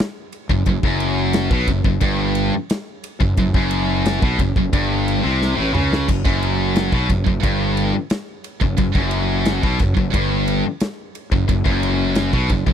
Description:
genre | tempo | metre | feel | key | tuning
heavy metal | 89 BPM | 4/4 | straight | unclear | A4 = 440 Hz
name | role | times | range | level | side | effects
big rock drum kit | drums | 0.0-12.7 s | crash cymbal, kick drum, ride cymbal, snare drum, toms | -21 LUFS | equal | none
heavy high-gain guitar | riff | 0.5-12.7 s | F#2 to C#3 | -22 LUFS | left 11 dB | distortion
scooped high-gain guitar | riff | 0.5-12.7 s | F#2 to C#3 | -22 LUFS | right 9 dB | distortion
fuzz fingered electric bass | bass | 0.5-12.7 s | F#1 to C#2 | -22 LUFS | equal | overdrive
room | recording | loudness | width
little or no reverb | dry, close 1970s-style studio recording | -16 LUFS | side -9 dB against mid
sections
0.0-12.7 A section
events
drum fill 5.4-6.1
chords
none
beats
0.00 | 0.68 1.35 2.03 2.71 | 3.38 4.06 4.73 5.41 | 6.08 6.76 7.44 8.11 | 8.79 9.47 10.14 10.82 | 11.49 12.17

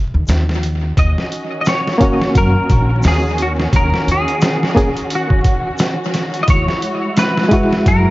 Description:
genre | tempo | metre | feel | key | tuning
trip hop | 87 BPM | 4/4 | swing 58% on 16ths | Eb phrygian | A4 = 440 Hz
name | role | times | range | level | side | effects
upright bass | bass | 0.1-8.0 s | Bb1 to Gb2 | -16 LUFS | equal | none
trip hop sampler-style drum kit | drums | 0.3-8.1 s | hi-hat, kick drum, snare drum | -17 LUFS | equal | tape echo
egg shaker | percussion | 0.3-7.3 s | none | -38 LUFS | left 2 dB | none
semi-hollow electric guitar | melody | 1.0-8.1 s | Gb4 to Eb5 | -20 LUFS | equal | ensemble chorus, tape echo
dark symphonic string section | sustained chords | 1.0-8.1 s | Eb3 to Gb4 | -23 LUFS | equal | vintage 12-bit sampler grit
barky reed electric piano | accompaniment | 2.0-8.1 s | G#3 to Ab4 | -18 LUFS | equal | tremolo, tape echo
room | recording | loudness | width
light reverb, small room reverb | echo-heavy mix, vinyl crackle, nothing above 7.5 kHz | -13 LUFS | side -18 dB against mid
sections
0.0-8.1 A section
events
none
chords
0.0 N.C.; 1.0 Ebm7; 6.5 Eadd9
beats
0.28 | 0.96 1.66 2.34 3.03 | 3.72 4.41 5.10 5.79 | 6.48 7.17 7.86

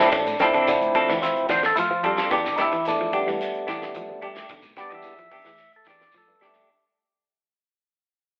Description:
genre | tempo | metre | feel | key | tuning
afrobeat | 110 BPM | 4/4 | straight | unclear | A4 = 440 Hz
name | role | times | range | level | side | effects
percussive tonewheel organ | accompaniment | 0.0-6.7 s | F3 to E5 | -26 LUFS | equal | overdrive
electric guitar at the edge of break-up | arpeggios | 0.0-6.6 s | D3 to G3 | -37 LUFS | equal | spring reverb
clean electric guitar | stabs | 0.0-6.7 s | F3 to A4 | -28 LUFS | equal | tremolo
fingered electric bass | bass | 0.0-6.5 s | B1 to F3 | -34 LUFS | equal | none
damped 70s drum kit | drums | 0.1-6.7 s | hi-hat, kick drum, snare drum, toms | -34 LUFS | equal | none
congas | percussion | 0.1-6.4 s | none | -45 LUFS | equal | none
shekere | percussion | 0.1-6.7 s | none | -36 LUFS | equal | none
room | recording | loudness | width
wet large studio reverb, RT60 1.2 s | band playing live in one room, telephone sound | -22 LUFS | mono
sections
0.0-6.7 A section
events
fade-out 0.0-6.7; tonewheel organ solo 0.0-6.7; drum fill 6.1-6.7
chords
0.0 Dm7; 2.3 Em7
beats
| 0.13 0.67 1.22 1.77 | 2.31 2.86 3.40 3.95 | 4.50 5.05 5.59 6.14

